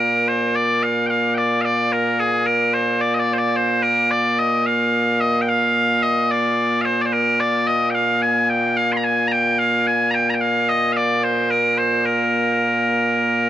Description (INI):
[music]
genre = scottish traditional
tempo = 73 BPM (dotted quarters)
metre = 6/8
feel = straight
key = Bb mixolydian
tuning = A4 = 445 Hz
[part]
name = loud bright bagpipes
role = solo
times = 0.0-13.5 s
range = Bb2 to C6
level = -16 LUFS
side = equal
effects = none
[sound]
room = light reverb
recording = dark, warm production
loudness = -16 LUFS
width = side -12 dB against mid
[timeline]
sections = 0.5-13.5 A section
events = none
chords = none